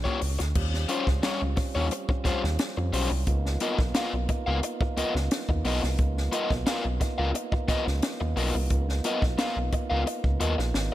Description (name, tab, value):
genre	funk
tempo	88 BPM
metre	4/4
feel	straight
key	unclear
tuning	A4 = 442 Hz
part	crunchy overdriven guitar	accompaniment	0.0-10.9 s	G3 to F5	-30 LUFS	left 2 dB	none
part	round analog bass	bass	0.0-10.9 s	Ab1 to F2	-27 LUFS	equal	none
part	compact cocktail drum kit	drums	0.1-10.9 s	crash cymbal, hi-hat, kick drum, snare drum	-29 LUFS	equal	none
part	tonewheel organ	sustained chords	0.6-10.9 s	G3 to F4	-36 LUFS	right 4 dB	stopped rotary speaker
room	light reverb, small room ambience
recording	none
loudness	-24 LUFS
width	side -14 dB against mid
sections	0.6-10.9 A section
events	drum fill 10.7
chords	0.0 Eb9 (rootless); 0.6 Eb13; 3.3 Db13